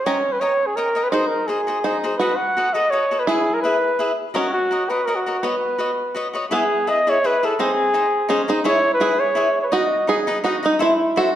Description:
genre	mexican folk, mariachi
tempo	167 BPM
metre	3/4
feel	straight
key	B major, E major from 6.5 s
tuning	A4 = 439 Hz
part	dark trumpet	melody	0.0-10.1 s	F#4 to F#5	-20 LUFS	equal	none
part	bluegrass banjo	second line	0.0-11.4 s	B3 to G#4	-23 LUFS	right 2 dB	none
part	cavaquinho	accompaniment	0.1-11.3 s	D#4 to A#5	-23 LUFS	left 3 dB	none
room	wet recital hall reverb, RT60 1.4 s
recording	dark, warm production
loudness	-17 LUFS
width	side -11 dB against mid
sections	0.0-6.5 A section; 6.5-11.4 B section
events	none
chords	0.1 D#7; 1.1 G#7; 2.2 B7; 3.3 E; 4.4 F#6; 5.4 Badd9; 6.5 E; 7.6 G#; 8.7 C#m; 9.7 B; 10.8 Am

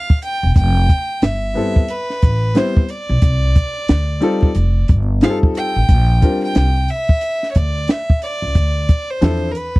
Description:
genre	hip hop, jazz-hop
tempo	90 BPM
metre	4/4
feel	swing 62% on 16ths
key	unclear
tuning	A4 = 440 Hz
part	rich fiddle	melody	0.0-9.8 s	Bb4 to G5	-22 LUFS	right 1 dB	none
part	compact cocktail drum kit	drums	0.1-9.8 s	hi-hat, kick drum, snare drum	-13 LUFS	equal	none
part	upright bass	bass	0.4-9.5 s	E1 to E2	-16 LUFS	equal	none
part	clear grand piano	accompaniment	1.5-9.5 s	F3 to C5	-19 LUFS	left 2 dB	none
room	little or no reverb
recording	dry, close 1970s-style studio recording, vinyl crackle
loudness	-14 LUFS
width	side -21 dB against mid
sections	0.0-9.8 A section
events	none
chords	0.0 C (rootless); 0.6 Fmaj9#11; 3.2 Cmadd9; 4.6 F7; 5.9 Bb69; 8.6 Dm9

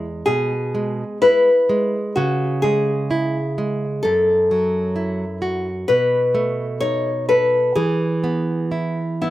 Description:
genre	romantic duo for nylon-string guitar and classical guitar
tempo	64 BPM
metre	4/4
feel	rubato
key	E major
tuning	A4 = 440 Hz
part	nylon-string guitar	melody	0.0-9.3 s	E4 to C#5	-18 LUFS	left 1 dB	none
part	nylon-string guitar	accompaniment	0.0-9.3 s	E2 to A4	-22 LUFS	right 2 dB	none
room	little or no reverb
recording	recorded outdoors, with no room sound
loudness	-17 LUFS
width	side -14 dB against mid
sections	0.0-9.3 A section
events	none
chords	0.0 E; 2.2 C#m; 4.0 F#m7; 5.9 B7; 7.8 E

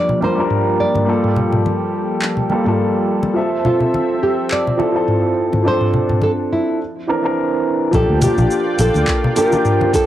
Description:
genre	sunset chillout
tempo	105 BPM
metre	4/4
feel	swing 56% on 16ths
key	unclear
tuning	A4 = 440 Hz
part	nylon-string guitar	melody	0.0-10.1 s	E4 to D5	-20 LUFS	equal	cassette tape, analog delay
part	dark baby grand piano	accompaniment	0.0-10.1 s	E3 to E5	-18 LUFS	right 1 dB	auto-pan, vintage 12-bit sampler grit, cassette tape, analog delay
part	lush unison pad	sustained chords	0.0-10.1 s	F3 to G5	-24 LUFS	left 1 dB	chorus, cassette tape
part	congas	percussion	0.1-9.9 s	none	-21 LUFS	left 1 dB	none
part	smooth R&B drum kit	drums	0.5-10.1 s	handclaps, hi-hat, shaker, toms	-22 LUFS	equal	cassette tape
part	fingered electric bass	bass	7.9-9.0 s	Bb1 to D2	-17 LUFS	equal	transformer saturation
part	electronic kick drum	drums	7.9-10.1 s	none	-20 LUFS	equal	cassette tape
room	moderate small room ambience, RT60 0.5 s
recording	home recording on cassette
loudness	-14 LUFS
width	side -12 dB against mid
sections	0.0-7.9 A section; 7.9-10.1 B section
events	filter sweep on analog synth pad 0.0-7.9; break 6.8-7.9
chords	0.0 Bb6; 1.1 Gm9; 3.4 Fmaj7; 5.7 Dm7; 6.8 C9; 7.9 Bb6

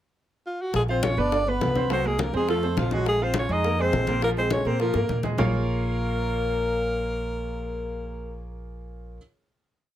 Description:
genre	Afro-Cuban jazz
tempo	207 BPM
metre	4/4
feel	straight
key	Bb minor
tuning	A4 = 440 Hz
part	breathy alto saxophone	melody	0.5-8.5 s	F4 to Eb5	-28 LUFS	equal	none
part	upright bass	bass	0.7-9.2 s	G1 to Bb2	-28 LUFS	equal	none
part	bongos	percussion	0.7-5.5 s	none	-34 LUFS	left 6 dB	none
part	congas	percussion	0.7-5.5 s	none	-30 LUFS	left 2 dB	none
part	clear trombone	second line	0.8-8.5 s	F3 to Eb4	-32 LUFS	left 5 dB	none
part	clear baby grand piano	accompaniment	0.9-9.2 s	F3 to F5	-30 LUFS	right 3 dB	none
room	moderate club reverb, RT60 0.5 s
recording	none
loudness	-22 LUFS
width	side -12 dB against mid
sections	0.0-0.7 pickup bar; 0.7-5.4 A section; 5.4-7.7 final chord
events	drum fill 4.9-5.4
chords	0.0 N.C.; 0.7 Bb5; 1.3 G; 1.9 Ab13/C; 2.5 F; 3.1 Bb5; 5.4 Bbm7

